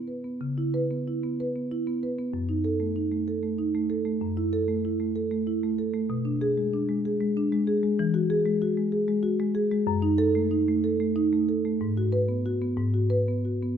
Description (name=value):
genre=classical, contemporary piece for solo marimba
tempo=63 BPM (dotted quarters)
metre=6/8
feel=rubato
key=C# minor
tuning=A4 = 440 Hz
part: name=marimba with soft mallets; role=solo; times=0.0-13.8 s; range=F#2 to B4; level=-24 LUFS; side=equal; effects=none
room=wet recital hall reverb, RT60 1.6 s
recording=nothing above 10.8 kHz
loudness=-24 LUFS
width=side -8 dB against mid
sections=0.4-13.8 A section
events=none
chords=0.4 C#m7; 2.3 F#m6; 4.2 F#m7; 6.1 Bm6; 8.0 Eadd9; 9.9 F#m6; 11.8 G#m7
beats=| 0.41 1.39 | 2.33 3.28 | 4.22 5.16 | 6.09 7.04 | 7.97 8.93 | 9.87 10.84 | 11.80 12.78